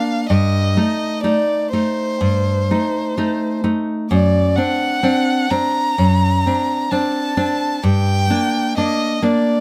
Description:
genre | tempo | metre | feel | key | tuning
romantic duo for violin and classical guitar | 64 BPM | 4/4 | rubato | unclear | A4 = 440 Hz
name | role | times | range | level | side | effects
rich violin | melody | 0.0-9.6 s | C5 to Bb5 | -23 LUFS | equal | none
nylon-string guitar | accompaniment | 0.0-9.6 s | F#2 to Eb4 | -19 LUFS | equal | none
room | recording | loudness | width
little or no reverb | close, detailed microphones | -18 LUFS | mono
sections
0.0-9.6 A section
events
none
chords
0.3 Am7b5/G; 4.1 D7/F#; 7.8 Gm

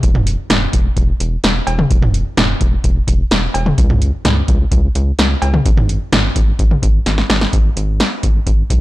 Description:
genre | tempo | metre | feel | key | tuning
synth-pop | 128 BPM | 4/4 | straight | unclear | A4 = 439 Hz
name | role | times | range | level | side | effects
rubbery square bass | bass | 0.0-8.8 s | Fb1 to Db2 | -17 LUFS | equal | none
electro analog drum machine | drums | 0.0-8.8 s | cowbell, hi-hat, kick drum, snare drum, toms | -14 LUFS | equal | none
room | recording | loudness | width
light reverb | blown-out, overdriven recording, overdrive | -12 LUFS | side -17 dB against mid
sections
0.0-7.5 A section; 7.5-8.8 B section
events
drum fill 7.1-7.5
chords
none

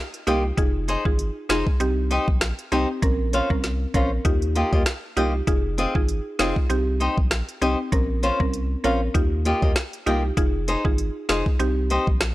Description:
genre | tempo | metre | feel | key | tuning
dancehall | 98 BPM | 4/4 | swing 56% on 16ths | F minor | A4 = 438 Hz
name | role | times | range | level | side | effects
mallet-like synth pluck | accompaniment | 0.0-12.3 s | C4 to Bb4 | -27 LUFS | equal | chorus, sidechain pumping
island pop drum kit | drums | 0.1-12.3 s | hi-hat, kick drum, rim click, snare drum | -23 LUFS | equal | none
flamenco guitar | arpeggios | 0.3-12.1 s | Bb3 to F5 | -25 LUFS | left 1 dB | none
warm sub bass | bass | 0.3-12.3 s | F1 to Eb2 | -26 LUFS | equal | none
room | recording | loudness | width
digital ambience | dry, gritty hardware recording, transformer saturation | -20 LUFS | side -17 dB against mid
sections
0.0-12.3 A section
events
none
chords
0.0 Ebadd9; 0.6 Fm7; 1.8 Cm; 3.0 Bbmadd9; 4.3 Ebadd9; 5.5 Fm7; 6.7 Cm; 7.9 Bbmadd9; 9.1 Ebadd9; 10.4 Fm7; 11.6 Cm

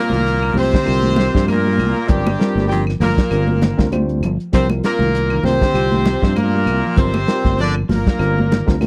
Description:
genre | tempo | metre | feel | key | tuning
afrobeat | 98 BPM | 4/4 | swing 55% on 16ths | C minor | A4 = 439 Hz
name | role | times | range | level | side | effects
clear horn section | melody | 0.0-8.8 s | G3 to D5 | -23 LUFS | equal | none
raspy baritone saxophone | second line | 0.0-8.8 s | G2 to D3 | -27 LUFS | equal | none
tine electric piano | accompaniment | 0.0-8.9 s | G3 to C5 | -26 LUFS | equal | none
electric guitar at the edge of break-up | arpeggios | 0.1-8.9 s | D3 to G3 | -28 LUFS | equal | none
fingered electric bass | bass | 0.1-8.9 s | G1 to G2 | -22 LUFS | equal | none
warm soul drum kit | drums | 0.1-8.9 s | hi-hat, kick drum, snare drum | -20 LUFS | equal | none
congas | percussion | 0.1-8.9 s | none | -25 LUFS | equal | none
claves | percussion | 0.4-8.9 s | none | -37 LUFS | equal | none
room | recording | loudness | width
small room ambience | dry, close 1970s-style studio recording | -17 LUFS | mono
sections
0.0-8.9 A section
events
none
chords
0.0 Cm7; 2.1 Gm7; 4.5 Cm7; 7.0 Gm7

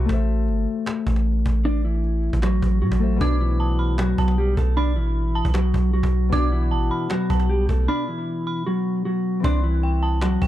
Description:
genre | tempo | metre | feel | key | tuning
hip hop, trap | 154 BPM | 4/4 | half-time | B phrygian | A4 = 443 Hz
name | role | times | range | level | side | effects
Celtic harp | accompaniment | 0.0-10.5 s | B2 to E5 | -29 LUFS | left 6 dB | none
long sustained 808-style bass | bass | 0.0-10.5 s | G1 to A2 | -20 LUFS | equal | none
cajon | drums | 0.1-10.5 s | none | -30 LUFS | equal | none
mellow electric guitar | melody | 1.7-10.5 s | E3 to D5 | -24 LUFS | left 1 dB | none
dark detuned synth bell | second line | 3.2-10.5 s | G5 to D6 | -30 LUFS | right 2 dB | chorus, phaser, plate reverb, analog delay
room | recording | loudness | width
little or no reverb | dark, warm production | -19 LUFS | side -13 dB against mid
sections
0.0-10.5 A section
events
break 0.0-1.6, 7.9-9.4; hi-hats muted 3.2-9.4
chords
0.1 Am; 3.2 Bm; 9.4 C

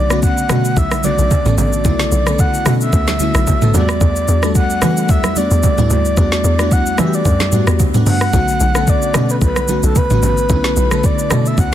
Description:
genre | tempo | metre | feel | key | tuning
amapiano | 111 BPM | 4/4 | swing 55% on 16ths | B minor | A4 = 438 Hz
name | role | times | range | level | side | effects
breathy flute-like synth lead | melody | 0.0-11.7 s | A4 to F#5 | -20 LUFS | equal | chorus, ping-pong delay
crystalline FM electric piano | accompaniment | 0.0-11.7 s | C#3 to A4 | -19 LUFS | left 2 dB | chorus
hollow log drum bass | bass | 0.0-11.7 s | A1 to E3 | -17 LUFS | equal | none
smooth R&B drum kit | drums | 0.1-11.7 s | hi-hat, kick drum, rim click, shaker, snare drum, toms | -17 LUFS | equal | soft clipping on snare
congas | percussion | 0.1-11.4 s | none | -25 LUFS | right 9 dB | none
room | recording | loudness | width
little or no reverb | dense, heavily limited modern master | -12 LUFS | side -11 dB against mid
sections
0.0-11.7 A section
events
none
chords
0.0 Bm7; 3.7 Em11; 8.3 Bm7

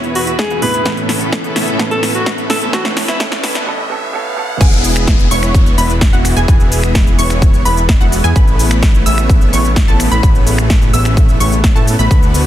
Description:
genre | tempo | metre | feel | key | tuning
EDM, festival progressive house | 128 BPM | 4/4 | straight | unclear | A4 = 440 Hz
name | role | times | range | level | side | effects
felt-muted upright piano | accompaniment | 0.0-4.6 s | A2 to A4 | -23 LUFS | right 5 dB | sidechain pumping, tape echo
bright studio string section | sustained chords | 0.0-12.5 s | E2 to B4 | -24 LUFS | equal | sidechain pumping
dense compressed supersaw | riff | 0.0-12.5 s | A3 to E5 | -20 LUFS | equal | sidechain pumping, low-pass filter, tape echo
big-room dance drum kit | drums | 0.0-12.4 s | crash cymbal, finger snaps, hi-hat, shaker, snare drum | -19 LUFS | equal | soft clipping on snare
riser and downlifter | sound effects | 1.0-8.4 s | none | -26 LUFS | equal | none
breathy alto saxophone | melody | 0.2-3.2 s | E4 to B4 | -20 LUFS | equal | tape echo
electronic kick drum | drums | 0.4-12.2 s | none | -11 LUFS | equal | high-pass filter on kick, high-pass filter on room
wide unison pluck | arpeggios | 4.6-12.5 s | F#5 to E6 | -21 LUFS | equal | sidechain pumping, tape echo
fat analog bass | bass | 4.6-12.5 s | E1 to A2 | -15 LUFS | equal | sidechain pumping
room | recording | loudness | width
light reverb, digital ambience | dense, heavily limited modern master, high-pass filter | -10 LUFS | side -12 dB against mid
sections
0.0-4.6 A section; 4.6-12.5 B section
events
build-up 0.0-4.6; drum fill 0.0-3.7; filter sweep on supersaw synth 0.0-4.6; break 3.7-4.6; drop 4.6-12.5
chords
0.0 E; 0.9 Aadd9; 4.6 E; 8.4 Aadd9

